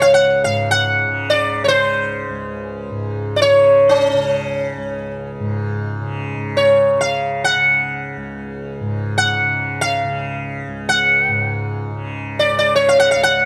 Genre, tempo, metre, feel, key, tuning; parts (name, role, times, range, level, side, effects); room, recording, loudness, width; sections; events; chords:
indian classical, Hindustani; free time; C# major; A4 = 440 Hz
sitar; melody; 0.0-13.5 s; C#4 to F#5; -16 LUFS; equal
tanpura; drone; 0.0-13.5 s; C#2 to C#3; -27 LUFS; equal
moderate recital hall reverb, RT60 1.8 s; close, detailed microphones; -17 LUFS; mono
0.0-6.3 A section; 6.3-13.5 A section